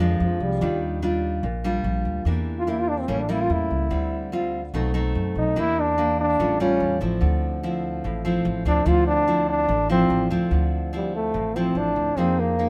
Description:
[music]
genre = bossa nova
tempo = 145 BPM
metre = 4/4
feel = straight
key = D minor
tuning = A4 = 439 Hz
[part]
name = clear trombone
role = melody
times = 0.0-12.7 s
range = D3 to F4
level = -26 LUFS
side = equal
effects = none
[part]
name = nylon-string guitar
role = accompaniment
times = 0.0-12.7 s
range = F2 to Ab4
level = -27 LUFS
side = equal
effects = none
[part]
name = upright bass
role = bass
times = 0.0-12.7 s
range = A1 to F#2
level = -28 LUFS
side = equal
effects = none
[sound]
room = light reverb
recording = none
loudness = -23 LUFS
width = mono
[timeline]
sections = 0.0-10.5 A section; 10.5-12.7 B section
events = trombone solo 0.0-10.5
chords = 0.0 Bb7 (rootless); 0.6 Ebmaj9; 2.3 Em7b5; 3.1 A7b9; 3.9 Dm11; 4.7 B7b9; 5.6 Em7b5; 6.4 A7b13; 7.2 Dm9; 12.2 Fm7

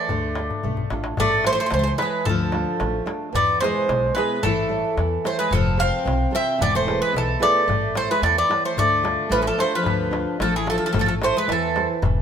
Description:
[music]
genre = greek folk, Greek bouzouki band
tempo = 111 BPM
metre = 2/4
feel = straight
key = D dorian sharp4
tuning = A4 = 441 Hz
[part]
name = Greek bouzouki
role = melody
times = 0.0-11.9 s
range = G#4 to F5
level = -22 LUFS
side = right 2 dB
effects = none
[part]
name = Greek bouzouki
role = second line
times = 0.0-11.9 s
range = E3 to C4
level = -27 LUFS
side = left 4 dB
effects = none
[part]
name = nylon-string guitar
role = accompaniment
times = 0.0-12.2 s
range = B2 to C#5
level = -28 LUFS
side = right 4 dB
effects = none
[part]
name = upright bass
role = bass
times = 0.1-12.2 s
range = E1 to E2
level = -26 LUFS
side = equal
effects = none
[part]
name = darbuka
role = percussion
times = 0.1-12.2 s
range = none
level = -28 LUFS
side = left 4 dB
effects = none
[sound]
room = moderate plate reverb, RT60 2.8 s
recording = minimal, uncompressed stereo recording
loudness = -19 LUFS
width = side -8 dB against mid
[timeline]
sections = 0.0-1.2 A section; 1.2-9.9 A section; 9.9-12.2 B section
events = drum fill 0.5-1.2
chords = 0.1 Dm; 1.2 A; 2.3 Dm; 3.3 E; 4.4 A; 5.5 F; 6.6 E; 7.7 A; 8.8 Dm; 10.9 Am

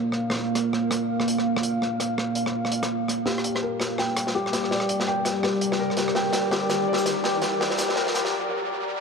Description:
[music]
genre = half-time drum and bass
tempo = 166 BPM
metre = 4/4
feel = swing 59% on 16ths, half-time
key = G minor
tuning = A4 = 440 Hz
[part]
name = deep dark ambient pad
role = sustained chords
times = 0.0-9.0 s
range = G3 to F5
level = -25 LUFS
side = equal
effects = chorus, built-in reverb
[part]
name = crunchy breakbeat drum kit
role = drums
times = 0.1-8.3 s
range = hi-hat, rim click, shaker, snare drum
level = -28 LUFS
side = equal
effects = high-pass filter on hats, high-pass filter on snare, high-pass filter on perc, high-pass filter on room
[part]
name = felt-muted upright piano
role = arpeggios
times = 3.3-9.0 s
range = G4 to G5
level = -27 LUFS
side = left 2 dB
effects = low-pass filter, dub echo
[part]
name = riser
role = sound effects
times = 4.5-9.0 s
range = none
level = -36 LUFS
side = equal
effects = none
[sound]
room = moderate huge ambient reverb, RT60 4.8 s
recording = dark, warm production, high-pass filter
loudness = -22 LUFS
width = side -5 dB against mid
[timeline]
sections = 0.0-3.3 A section; 3.3-9.0 B section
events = filter sweep on ambient pad 0.0-3.3; build-up 3.3-9.0; drum fill 3.3-8.3; filter sweep on felt piano 3.3-9.0; riser 4.5-9.0; break 8.3-9.0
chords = 0.0 Bb; 3.3 Gm

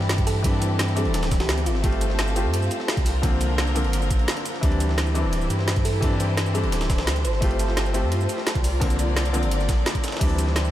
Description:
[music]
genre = liquid drum and bass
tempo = 172 BPM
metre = 4/4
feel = straight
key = D minor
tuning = A4 = 438 Hz
[part]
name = warm baby grand piano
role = accompaniment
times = 0.0-10.7 s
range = D3 to G4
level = -28 LUFS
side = left 1 dB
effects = analog delay
[part]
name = warm studio string section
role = sustained chords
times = 0.0-10.7 s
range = C4 to D5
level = -31 LUFS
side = left 2 dB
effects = sidechain pumping
[part]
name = warm sub bass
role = bass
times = 0.0-10.7 s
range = D1 to G2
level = -24 LUFS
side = equal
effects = none
[part]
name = breakbeat sampler-style drum kit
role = drums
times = 0.0-10.6 s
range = hi-hat, ride cymbal, snare drum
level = -34 LUFS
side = right 1 dB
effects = high-pass filter on cymbals, studio reverb, high-pass filter on snare, high-pass filter on hats
[part]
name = drum and bass drum kit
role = drums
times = 0.1-10.7 s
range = crash cymbal, hi-hat, shaker, snare drum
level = -29 LUFS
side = equal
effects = overdrive, studio reverb
[part]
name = electronic kick drum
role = drums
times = 0.2-10.3 s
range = none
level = -23 LUFS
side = equal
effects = overdrive, studio reverb
[part]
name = thumb-piano-like synth pluck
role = melody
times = 0.3-2.0, 5.8-7.7 s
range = F4 to C5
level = -35 LUFS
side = right 1 dB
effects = none
[sound]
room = light reverb, digital ambience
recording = none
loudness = -20 LUFS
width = side -13 dB against mid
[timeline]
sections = 0.0-10.7 A section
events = none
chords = 0.0 D9sus4; 1.7 G9sus4; 3.1 C9sus4; 4.6 D9sus4; 7.2 G9sus4; 8.6 C9sus4

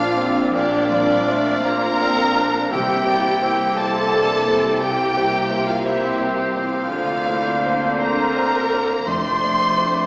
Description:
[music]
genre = cinematic, emotional film score for orchestra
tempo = 57 BPM (dotted quarters)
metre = 6/8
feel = rubato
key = unclear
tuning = A4 = 438 Hz
[part]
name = rich studio violin section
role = melody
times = 0.0-10.1 s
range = D5 to C6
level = -28 LUFS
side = equal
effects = none
[part]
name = silver concert flute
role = second line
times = 0.0-10.1 s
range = D5 to C6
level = -27 LUFS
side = equal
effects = none
[part]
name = warm clarinet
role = second line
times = 0.0-10.1 s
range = G3 to D4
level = -31 LUFS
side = equal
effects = none
[part]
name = warm oboe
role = second line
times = 0.0-10.1 s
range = C5 to F5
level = -30 LUFS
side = equal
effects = none
[part]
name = warm studio violin section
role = second line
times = 0.0-10.1 s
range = A3 to G4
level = -33 LUFS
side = equal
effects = none
[part]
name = dark grand piano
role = accompaniment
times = 0.0-10.1 s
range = Bb1 to C5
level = -29 LUFS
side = equal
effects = none
[part]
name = rich studio viola section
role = accompaniment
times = 0.0-10.1 s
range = F3 to C5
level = -27 LUFS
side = equal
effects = none
[part]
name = dark French horn section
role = sustained chords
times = 0.0-10.1 s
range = A3 to G4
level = -29 LUFS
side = equal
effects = none
[part]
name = concert harp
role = arpeggios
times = 0.0-10.1 s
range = Bb2 to C6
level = -36 LUFS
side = equal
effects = none
[part]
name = rich studio cello section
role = bass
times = 0.0-10.1 s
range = F2 to D3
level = -32 LUFS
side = equal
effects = none
[part]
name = rich studio double bass section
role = bass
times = 0.0-10.1 s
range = F1 to D2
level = -37 LUFS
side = equal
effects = none
[part]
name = timpani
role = percussion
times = 2.7-3.7, 9.1-10.1 s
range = F2 to C3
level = -36 LUFS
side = equal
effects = none
[sound]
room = wet recital hall reverb, RT60 1.5 s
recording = heard from further back in the room, small speaker sound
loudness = -19 LUFS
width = mono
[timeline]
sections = 0.0-10.1 A section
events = none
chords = 0.0 Bbadd9; 2.7 C7; 6.9 Bbadd9/D; 9.1 F6

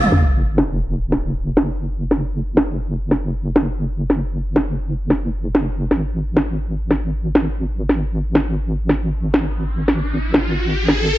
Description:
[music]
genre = half-time drum and bass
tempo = 166 BPM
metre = 4/4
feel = swing 54% on 16ths, half-time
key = unclear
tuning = A4 = 441 Hz
[part]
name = deep soft wobble bass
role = bass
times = 0.0-11.2 s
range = F#1 to G#1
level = -21 LUFS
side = equal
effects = chorus
[part]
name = organic electronic drum kit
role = drums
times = 0.0-11.0 s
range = snare drum, toms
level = -18 LUFS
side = equal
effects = overdrive, low-pass filter on hats, low-pass filter on snare, low-pass filter on perc, low-pass filter on toms
[part]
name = sub drop and riser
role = sound effects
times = 0.1-1.6, 9.6-11.2 s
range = none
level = -21 LUFS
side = equal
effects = none
[sound]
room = light reverb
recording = none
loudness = -17 LUFS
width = side -15 dB against mid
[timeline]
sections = 0.1-11.2 A section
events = impact 0.1-1.6; riser 9.6-11.2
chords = none

